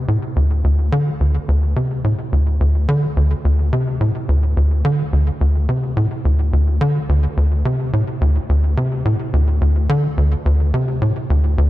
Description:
ambient; 107 BPM; 4/4; straight; A4 = 439 Hz
tight sequencer bass; solo; 0.0-11.7 s; D2 to D3; -15 LUFS; equal; wide subtle chorus
moderate plate reverb, RT60 2.9 s; dark, warm production; -15 LUFS; side -16 dB against mid
0.0-11.7 A section

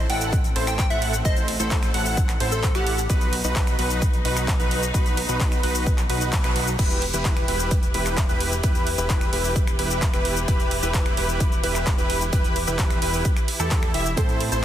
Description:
EDM, festival progressive house; 130 BPM; 4/4; straight; E harmonic minor; A4 = 440 Hz
muted studio string section; sustained chords; 0.0-14.6 s; E3 to F#5; -33 LUFS; left 1 dB; sidechain pumping
wide unison lead; arpeggios; 0.0-14.6 s; A4 to F#5; -29 LUFS; right 1 dB; sidechain pumping, tape echo
dense compressed supersaw; riff; 0.0-14.6 s; D#4 to F#5; -29 LUFS; right 1 dB; sidechain pumping, tape echo
fat analog bass; bass; 0.0-14.6 s; E1 to E2; -28 LUFS; equal; sidechain pumping
plucky unison lead; melody; 0.1-3.1 s; G4 to G5; -30 LUFS; equal; tape echo
big-room dance drum kit; drums; 0.1-14.6 s; cabasa, crash cymbal, finger snaps, handclaps, hi-hat, ride cymbal; -28 LUFS; equal
electronic kick drum; drums; 0.3-14.3 s; -22 LUFS; equal
felt-muted upright piano; accompaniment; 14.2-14.6 s; A2 to A4; -29 LUFS; right 4 dB; sidechain pumping, tape echo
light reverb; dense, heavily limited modern master; -20 LUFS; side -11 dB against mid
0.0-6.8 A section; 6.8-14.6 A section
drop 0.0-6.8, 6.8-14.6; band accent 6.3
0.0 Am; 3.1 B; 6.8 Em

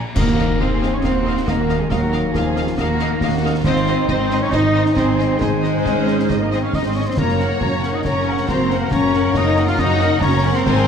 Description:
cinematic, heroic adventure film score; 137 BPM; 4/4; straight; Eb dorian; A4 = 440 Hz
dark symphonic violin section; melody; 0.0-10.9 s; Eb5 to Bb5; -28 LUFS; left 4 dB
warm studio violin section; second line; 0.0-10.9 s; Eb4 to A#5; -28 LUFS; left 2 dB
warm symphonic viola section; accompaniment; 0.0-10.9 s; Db4 to F5; -29 LUFS; right 2 dB
concert harp; arpeggios; 0.0-10.9 s; Gb2 to F6; -26 LUFS; left 8 dB
dark symphonic cello section; bass; 0.0-10.9 s; F3 to F4; -24 LUFS; right 3 dB
warm symphonic double bass section; bass; 0.0-10.9 s; Gb1 to Eb2; -22 LUFS; right 4 dB
concert flute; second line; 0.2-10.9 s; F5 to F6; -29 LUFS; equal
warm clarinet; second line; 0.2-10.9 s; F4 to F5; -28 LUFS; left 1 dB
bright trombone section; sustained chords; 0.2-10.9 s; Db3 to Eb4; -28 LUFS; right 5 dB
mellow French horn section; sustained chords; 0.2-10.9 s; F3 to F4; -24 LUFS; left 5 dB
concert snare drum, clash cymbals and concert bass drum; drums; 0.2-10.9 s; -26 LUFS; equal
clash cymbals and concert bass drum; percussion; 0.2-1.0 s; -25 LUFS; equal
timpani; percussion; 0.2-0.8 s; Eb3; -26 LUFS; right 1 dB
moderate scoring stage reverb, RT60 2.0 s; dark, warm production; -15 LUFS; side -7 dB against mid
0.2-10.9 A section
band accent 0.2-0.6
0.2 Ebmadd9; 3.7 Ab; 7.2 Gb

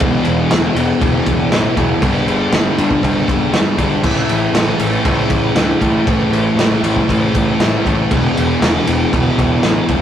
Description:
garage rock duo or trio; 118 BPM; 4/4; straight; A4 = 439 Hz
thick fuzz guitar; riff; 0.0-10.0 s; E2 to A3; -16 LUFS; left 1 dB; distortion
fuzz picked electric bass; bass; 0.0-10.0 s; E1 to D2; -19 LUFS; equal; overdrive, tube saturation
crunchy breakbeat drum kit; drums; 0.0-10.0 s; crash cymbal, kick drum, ride cymbal, snare drum; -17 LUFS; equal
moderate stone room reverb, RT60 1.3 s; rough rehearsal-room recording, tube saturation; -12 LUFS; side -10 dB against mid
0.0-10.0 A section
0.0 E5; 2.0 G5; 4.1 A5; 8.1 E5

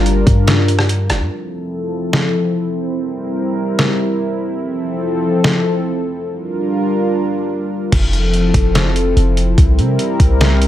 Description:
hip hop, atmospheric cloud-rap; 145 BPM; 4/4; half-time; F major; A4 = 440 Hz
warm analog pad; sustained chords; 0.0-10.7 s; F3 to Bb4; -17 LUFS; left 1 dB; chorus, sidechain pumping, low-pass filter
clean 808-style bass; bass; 0.0-1.3, 7.9-10.7 s; F1 to C3; -14 LUFS; equal
trip hop sampler-style drum kit; drums; 0.1-10.7 s; crash cymbal, hi-hat, kick drum, rim click, snare drum; -16 LUFS; equal
little or no reverb; -14 LUFS; side -12 dB against mid
0.0-1.3 A section; 1.3-7.9 B section; 7.9-10.7 C section
filter sweep on analog synth pad 1.3-7.9
0.0 Gm7; 1.3 Fmaj7; 3.0 C7; 4.6 Fmaj7; 6.3 Gm7; 7.9 Fmaj7; 9.6 C7

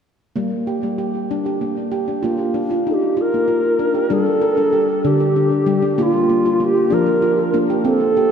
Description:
world meditative, meditative tuned percussion; 64 BPM (dotted quarters); 6/8; straight; G minor; A4 = 438 Hz
handpan; arpeggios; 0.4-8.3 s; D3 to Bb4; -18 LUFS; left 1 dB; diffuse ambient delay
mellow low Native American-style wooden flute; melody; 2.9-8.3 s; F4 to Bb4; -17 LUFS; right 1 dB; diffuse ambient delay
wet lush hall reverb, RT60 2.6 s; dreamy mix soaked in reverb; -15 LUFS; side -7 dB against mid
0.3-4.1 A section; 4.1-8.3 B section
0.3 Gm; 2.2 Bb; 4.1 G5; 6.0 Bb

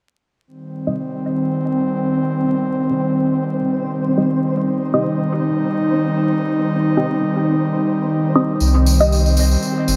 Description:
dub techno; 118 BPM; 4/4; swing 56% on 16ths; C minor; A4 = 440 Hz
airy breathy pad; sustained chords; 0.5-10.0 s; Eb3 to Eb4; -20 LUFS; equal; chorus, vintage 12-bit sampler grit
flickering grainy texture; texture; 2.1-10.0 s; C4 to C5; -30 LUFS; equal; built-in reverb
filtered dub chord stab; stabs; 0.9-10.0 s; C4 to Eb5; -24 LUFS; equal; phaser, dub echo
warm sub bass; bass; 8.6-10.0 s; G1 to C2; -16 LUFS; equal
tambourine; percussion; 8.6-10.0 s; -27 LUFS; equal
moderate echo chamber reverb, RT60 2.0 s; echo-heavy mix, vinyl crackle; -18 LUFS; mono
0.5-10.0 A section
filter sweep on synth stab 0.5-10.0
0.5 Cm

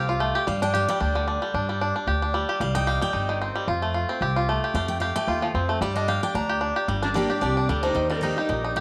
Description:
bluegrass; 225 BPM; 4/4; swing 55% on 8ths; G minor; A4 = 439 Hz
bluegrass banjo; melody; 0.0-8.8 s; D3 to G4; -27 LUFS; equal
picked steel-string acoustic guitar; accompaniment; 0.0-8.8 s; G2 to Bb5; -32 LUFS; equal
upright bass; bass; 0.0-8.8 s; G1 to G2; -30 LUFS; equal
picked steel-string acoustic guitar; melody; 7.0-8.6 s; Bb4 to D5; -32 LUFS; equal; tape echo
lap resonator guitar; second line; 7.0-8.6 s; D4 to G4; -34 LUFS; equal
moderate echo chamber reverb, RT60 1.5 s, studio ambience; -25 LUFS; mono
0.0-6.9 A section; 6.9-8.8 B section
steel-string acoustic guitar solo 0.0-6.9
0.5 G5; 2.6 Cm; 3.7 F; 5.8 Gm; 8.0 Eb

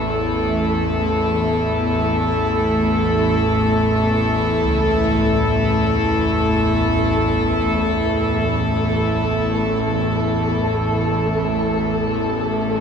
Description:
dark ambient drone; free time; A major; A4 = 436 Hz
rich studio cello section; sustained chords; 0.0-12.8 s; A3 to A4; -19 LUFS; left 1 dB
bowed-like drone; drone; 0.0-12.8 s; A1 to E2; -21 LUFS; right 1 dB; built-in reverb
flickering grainy texture; texture; 0.0-12.8 s; A4; -29 LUFS; right 1 dB
gamelan-type bossed gongs; arpeggios; 4.6-11.0 s; C#2; -29 LUFS; equal; diffuse ambient delay
wet cathedral reverb, RT60 6.2 s; -16 LUFS; side -6 dB against mid
0.0-12.8 A section
0.0 A5

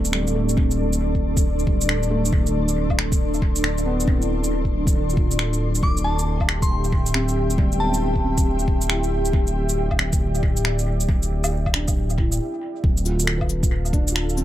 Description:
future garage; 137 BPM; 4/4; swing 62% on 16ths; D dorian; A4 = 445 Hz
felt-muted upright piano; accompaniment; 0.0-14.4 s; G3 to B4; -29 LUFS; right 1 dB; sidechain pumping, analog delay
ethereal airy pad; sustained chords; 0.0-14.4 s; D4 to C6; -28 LUFS; left 1 dB; ensemble chorus, built-in reverb, sidechain pumping
dark detuned saw bass; bass; 0.0-14.4 s; D1; -23 LUFS; equal; sidechain pumping
electronic shaker, finger snaps, woodblock and cabasa; drums; 0.0-14.4 s; -26 LUFS; equal; analog delay
electronic kick drum; drums; 0.6-14.0 s; -21 LUFS; equal
glassy synth bell; melody; 5.8-8.2 s; A5 to D6; -29 LUFS; left 1 dB; chorus, analog delay
light reverb; echo-heavy mix; -19 LUFS; side -13 dB against mid
0.0-12.8 A section; 12.8-14.4 B section
break 12.4-12.8
0.0 Dm7; 5.8 C/D; 12.8 Dm

